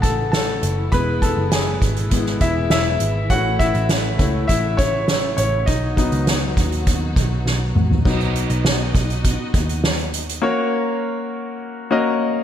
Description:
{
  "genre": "piano-driven pop",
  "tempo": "101 BPM",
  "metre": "4/4",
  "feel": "straight",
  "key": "unclear",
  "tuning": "A4 = 439 Hz",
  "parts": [
    { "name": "clear concert grand piano", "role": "accompaniment", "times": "0.0-12.4 s", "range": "F#3 to B5", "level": "-21 LUFS", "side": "left 2 dB", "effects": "slapback echo" },
    { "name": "warm studio string section", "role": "sustained chords", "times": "0.0-10.4 s", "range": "B2 to D#5", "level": "-30 LUFS", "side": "right 1 dB", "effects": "none" },
    { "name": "vintage muted picked electric bass", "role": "bass", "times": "0.0-10.4 s", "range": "E1 to D#2", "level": "-22 LUFS", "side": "equal", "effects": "none" },
    { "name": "soft-mallet drum kit", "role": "drums", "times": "0.0-10.4 s", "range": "crash cymbal, hi-hat, kick drum, snare drum, toms", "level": "-20 LUFS", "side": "right 1 dB", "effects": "none" }
  ],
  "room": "light reverb, studio reverb",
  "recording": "none",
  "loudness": "-17 LUFS",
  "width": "side -10 dB against mid",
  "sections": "0.0-8.1 A section; 8.1-10.4 B section; 10.4-12.4 C section",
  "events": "grand piano solo 0.0-8.1; drum fill 7.5-8.1",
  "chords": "0.0 A; 0.9 E; 3.3 A; 5.7 B; 10.4 F#",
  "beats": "0.33 | 0.93 1.52 2.12 2.71 | 3.30 3.90 4.49 5.08 | 5.68 6.27 6.87 7.46 | 8.05 8.65 9.24 9.84 | 10.43 11.02 11.62 12.21"
}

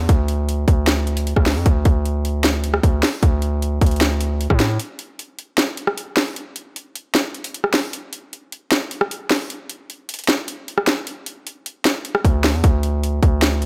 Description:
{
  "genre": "hip hop, trap",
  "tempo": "153 BPM",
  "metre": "4/4",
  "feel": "half-time",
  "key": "unclear",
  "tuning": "A4 = 438 Hz",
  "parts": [
    { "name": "distorted 808-style bass", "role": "bass", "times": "0.0-4.8, 12.2-13.7 s", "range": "D2 to A2", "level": "-22 LUFS", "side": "equal", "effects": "distortion" },
    { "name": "trap drum kit", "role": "drums", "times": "0.1-13.7 s", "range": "hi-hat, kick drum, rim click, snare drum", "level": "-21 LUFS", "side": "equal", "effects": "none" }
  ],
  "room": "light reverb",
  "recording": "none",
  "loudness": "-19 LUFS",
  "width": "mono",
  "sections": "0.0-13.7 A section",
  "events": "break 4.8-11.1, 11.1-11.9",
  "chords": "none",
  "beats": "| 0.09 0.48 0.87 1.27 | 1.66 2.05 2.44 2.83 | 3.23 3.62 4.01 4.40 | 4.80 5.19 5.58 5.97 | 6.36 6.76 7.15 7.54 | 7.93 8.32 8.72 9.11 | 9.50 9.89 10.29 10.68 | 11.07 11.46 11.85 12.25 | 12.64 13.03 13.42"
}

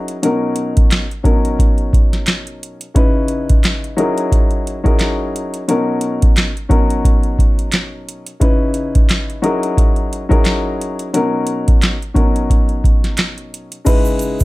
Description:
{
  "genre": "hip hop, boom-bap hip-hop",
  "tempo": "88 BPM",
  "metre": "4/4",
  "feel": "swing 56% on 16ths",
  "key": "unclear",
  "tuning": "A4 = 440 Hz",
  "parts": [
    { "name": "dark baby grand piano", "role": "accompaniment", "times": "0.0-14.4 s", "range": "B2 to B4", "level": "-18 LUFS", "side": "left 2 dB", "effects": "cassette tape, high-pass filter, low-pass filter, plate reverb" },
    { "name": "booming analog drum machine", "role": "drums", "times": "0.1-14.4 s", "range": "crash cymbal, handclaps, hi-hat, kick drum, snare drum", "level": "-14 LUFS", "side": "equal", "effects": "none" },
    { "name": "tube shaker", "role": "percussion", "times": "13.9-14.4 s", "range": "none", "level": "-31 LUFS", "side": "right 10 dB", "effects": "none" }
  ],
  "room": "light reverb",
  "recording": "none",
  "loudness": "-13 LUFS",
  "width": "side -19 dB against mid",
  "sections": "0.0-13.9 A section",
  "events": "none",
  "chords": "0.2 Bmaj9; 3.0 C#m9; 4.0 F#13; 5.7 Bmaj9; 8.4 C#m9; 9.4 F#13; 11.1 Bmaj9; 13.9 C#m7",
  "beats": "| 0.23 0.91 1.59 2.27 | 2.96 3.64 4.32 5.00 | 5.68 6.36 7.05 7.73 | 8.41 9.09 9.77 10.46 | 11.14 11.82 12.50 13.18 | 13.86"
}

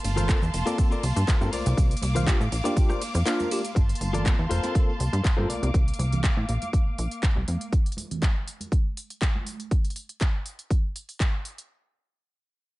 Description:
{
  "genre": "filtered disco house",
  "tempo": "121 BPM",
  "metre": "4/4",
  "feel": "straight",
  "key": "unclear",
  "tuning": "A4 = 440 Hz",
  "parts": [
    { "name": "rich studio string section", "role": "sustained chords", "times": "0.0-7.7 s", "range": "Bb3 to D6", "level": "-34 LUFS", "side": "equal", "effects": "vintage 12-bit sampler grit, sidechain pumping, low-pass filter" },
    { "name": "direct-recorded clean electric guitar", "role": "riff", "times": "0.0-5.7 s", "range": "F4 to F5", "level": "-32 LUFS", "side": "left 5 dB", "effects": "sidechain pumping, low-pass filter" },
    { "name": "plucky analog bass", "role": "bass", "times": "0.0-7.6 s", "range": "F1 to A2", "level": "-26 LUFS", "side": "equal", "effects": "tube saturation, sidechain pumping, low-pass filter" },
    { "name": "house drum kit", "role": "drums", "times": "0.0-11.7 s", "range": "cabasa, handclaps, hi-hat, ride cymbal, rim click", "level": "-34 LUFS", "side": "equal", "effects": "sidechain pumping on hats, sidechain pumping on perc, sidechain pumping on cymbals" },
    { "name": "congas and tambourine", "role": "percussion", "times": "0.0-9.7 s", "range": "none", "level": "-36 LUFS", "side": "right 3 dB", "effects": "sidechain pumping on perc, low-pass filter on perc" },
    { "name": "bell-like tine electric piano", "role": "accompaniment", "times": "0.3-5.5 s", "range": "Bb3 to Bb4", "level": "-30 LUFS", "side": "equal", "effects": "phaser, sidechain pumping, low-pass filter" },
    { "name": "electronic kick drum", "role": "drums", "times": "0.3-11.3 s", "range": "none", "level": "-23 LUFS", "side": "equal", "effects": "none" }
  ],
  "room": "little or no reverb",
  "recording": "nothing above 10.6 kHz",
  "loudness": "-23 LUFS",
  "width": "side -19 dB against mid",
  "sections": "0.0-3.8 A section; 3.8-11.7 B section; 11.7-12.8 C section",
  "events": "drop 0.0-3.8; filter sweep 3.8-11.7",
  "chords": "0.0 Gm11; 1.5 C9sus4; 3.8 Gm11; 5.5 C9sus4; 7.7 N.C.",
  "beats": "0.29 0.79 1.28 | 1.78 2.27 2.77 3.27 | 3.76 4.26 4.75 5.25 | 5.74 6.24 6.74 7.23 | 7.73 8.22 8.72 9.21 | 9.71 10.21 10.70 11.20"
}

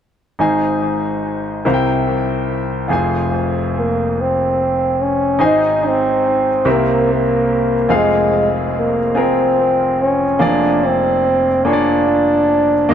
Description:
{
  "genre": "slow gospel",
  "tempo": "48 BPM (dotted quarters)",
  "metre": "6/8",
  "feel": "straight",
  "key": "Ab major",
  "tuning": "A4 = 439 Hz",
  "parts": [
    { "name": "bright grand piano", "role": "accompaniment", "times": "0.4-12.9 s", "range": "F1 to Ab5", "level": "-17 LUFS", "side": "equal", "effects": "tape echo" },
    { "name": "clear trombone", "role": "melody", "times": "3.8-12.9 s", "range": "Ab3 to Eb4", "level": "-15 LUFS", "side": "equal", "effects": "tape echo" }
  ],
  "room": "light reverb",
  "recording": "echo-heavy mix",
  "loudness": "-14 LUFS",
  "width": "side -9 dB against mid",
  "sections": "0.4-5.4 A section; 5.4-12.9 B section",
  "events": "none",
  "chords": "0.4 Ab; 1.6 C7; 2.9 Fm; 5.4 Ab; 6.7 C7; 7.9 Fm; 10.4 Bb7/F",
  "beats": "| 0.39 1.65 | 2.90 4.16 | 5.41 6.66 | 7.91 9.16 | 10.40 11.65 | 12.90"
}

